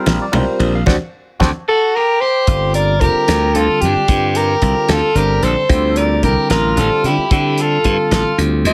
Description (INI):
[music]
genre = electric jazz fusion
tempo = 74 BPM (dotted quarters)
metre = 6/8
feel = straight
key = G dorian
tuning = A4 = 440 Hz
[part]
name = barky tine electric piano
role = accompaniment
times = 0.0-8.7 s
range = D3 to F#5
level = -23 LUFS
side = equal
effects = phaser
[part]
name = glassy slap bass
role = bass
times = 0.1-8.7 s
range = F1 to D3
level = -19 LUFS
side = equal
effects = none
[part]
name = damped 70s drum kit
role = drums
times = 0.1-8.7 s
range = hi-hat, kick drum, ride cymbal, snare drum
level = -21 LUFS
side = equal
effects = none
[part]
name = congas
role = percussion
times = 0.1-1.5 s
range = none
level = -23 LUFS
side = equal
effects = none
[part]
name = breathy soprano saxophone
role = melody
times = 1.7-8.7 s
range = G4 to E5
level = -19 LUFS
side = equal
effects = none
[part]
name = overdriven semi-hollow guitar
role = second line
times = 1.7-8.7 s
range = D4 to C5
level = -24 LUFS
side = equal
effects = none
[sound]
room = light reverb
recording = none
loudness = -15 LUFS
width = mono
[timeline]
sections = 0.0-2.5 A section; 2.5-8.7 B section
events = drum fill 0.9-2.5; band accent 0.9-2.5; tine electric piano fill 1.7-2.5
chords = 0.0 C7sus4; 0.9 D7; 2.5 Gm7; 5.7 Dm9